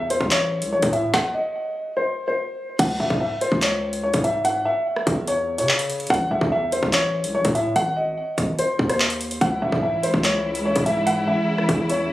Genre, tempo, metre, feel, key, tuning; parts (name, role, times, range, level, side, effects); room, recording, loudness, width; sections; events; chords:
hip hop, drill; 145 BPM; 4/4; half-time; C# harmonic minor; A4 = 445 Hz
dark concert grand piano; melody; 0.0-12.1 s; B#4 to F#5; -22 LUFS; left 1 dB; digital delay
hard-hitting 808-style bass; bass; 0.0-12.1 s; G#1 to C#3; -26 LUFS; equal
drill drum kit; drums; 0.1-12.0 s; crash cymbal, handclaps, hi-hat, kick drum, rim click, snare drum; -23 LUFS; equal
warm studio string section; sustained chords; 9.4-12.1 s; C#3 to E4; -24 LUFS; equal
light reverb; recorded on a phone in the room, studio reverb, compression; -19 LUFS; side -15 dB against mid
0.0-2.8 A section; 2.8-12.1 B section
stop 1.1-2.8
0.0 A; 1.1 N.C.; 2.8 C#m; 6.1 A; 7.8 G#; 9.4 C#m